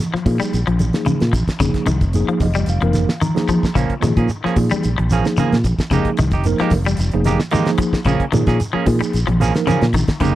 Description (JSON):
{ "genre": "afrobeat", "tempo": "112 BPM", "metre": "4/4", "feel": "swing 53% on 16ths", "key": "Bb dorian", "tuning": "A4 = 440 Hz", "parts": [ { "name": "damped 70s drum kit", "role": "drums", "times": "0.0-10.3 s", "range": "hi-hat, kick drum, snare drum", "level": "-21 LUFS", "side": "equal", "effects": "none" }, { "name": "semi-hollow electric guitar", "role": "arpeggios", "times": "0.1-10.3 s", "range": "Db3 to G3", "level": "-22 LUFS", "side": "left 5 dB", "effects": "spring reverb" }, { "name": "fingered electric bass", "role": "bass", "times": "0.1-10.3 s", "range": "F1 to Bb2", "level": "-18 LUFS", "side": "equal", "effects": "none" }, { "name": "tine electric piano", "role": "accompaniment", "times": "0.2-10.3 s", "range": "F3 to Bb5", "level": "-21 LUFS", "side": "right 2 dB", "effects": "medium stereo tremolo" }, { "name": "congas", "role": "percussion", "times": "0.3-10.1 s", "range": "none", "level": "-23 LUFS", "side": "right 2 dB", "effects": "none" }, { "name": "shekere", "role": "percussion", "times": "0.3-10.3 s", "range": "none", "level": "-27 LUFS", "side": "right 1 dB", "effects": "none" }, { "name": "semi-hollow electric guitar", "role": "stabs", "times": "3.8-10.3 s", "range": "F3 to Ab4", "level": "-21 LUFS", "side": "right 7 dB", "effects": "none" } ], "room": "little or no reverb", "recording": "dry, close 1970s-style studio recording", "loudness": "-15 LUFS", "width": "side -14 dB against mid", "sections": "0.0-10.3 A section", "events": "tine electric piano fill 2.2-3.8", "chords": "0.0 Bbm7; 1.6 Fm11; 3.8 Bbm7; 5.9 Fm11; 8.1 Bbm7", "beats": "0.00 0.54 1.07 | 1.61 2.15 2.69 3.23 | 3.77 4.31 4.84 5.38 | 5.92 6.46 7.00 7.53 | 8.07 8.61 9.15 9.68 | 10.22" }